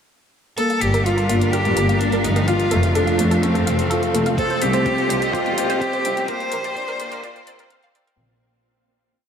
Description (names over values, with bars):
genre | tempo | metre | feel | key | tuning
piano and strings electronica | 126 BPM | 4/4 | straight | unclear | A4 = 440 Hz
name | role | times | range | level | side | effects
clear cello | melody | 0.6-7.7 s | C4 to C5 | -23 LUFS | equal | tape echo, shimmer reverb
clear studio string section | sustained chords | 0.6-8.2 s | Bb2 to F5 | -27 LUFS | equal | sidechain pumping, shimmer reverb
analog pluck | arpeggios | 0.6-8.1 s | A4 to G5 | -28 LUFS | right 2 dB | chorus, sidechain pumping, tape echo, shimmer reverb
warm upright piano | riff | 0.6-8.2 s | A3 to C5 | -23 LUFS | left 1 dB | wide subtle chorus, tape echo, shimmer reverb
deep house drum kit | drums | 0.6-8.2 s | hi-hat, toms | -31 LUFS | right 1 dB | high-pass filter on hats, high-pass filter on toms, high-pass filter on room
clear chamber double bass section | bass | 0.8-8.1 s | F1 to Bb2 | -23 LUFS | equal | sidechain pumping
electronic kick drum | drums | 4.4-7.8 s | none | -29 LUFS | equal | none
room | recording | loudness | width
wet huge ambient reverb, RT60 8.1 s | dreamy mix soaked in reverb, high-pass filter | -17 LUFS | side -8 dB against mid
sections
0.6-8.2 build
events
build-up 0.6-8.2; filter sweep on synth arpeggio sound 0.6-8.2; filter sweep 0.6-8.2; fade-out 5.7-8.2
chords
0.6 Gm7; 2.5 F; 4.4 Cm; 6.3 Bbadd9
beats
| 0.58 1.05 1.53 2.00 | 2.48 2.96 3.43 3.91 | 4.38 4.86 5.34 5.81 | 6.29 6.77 7.24 7.72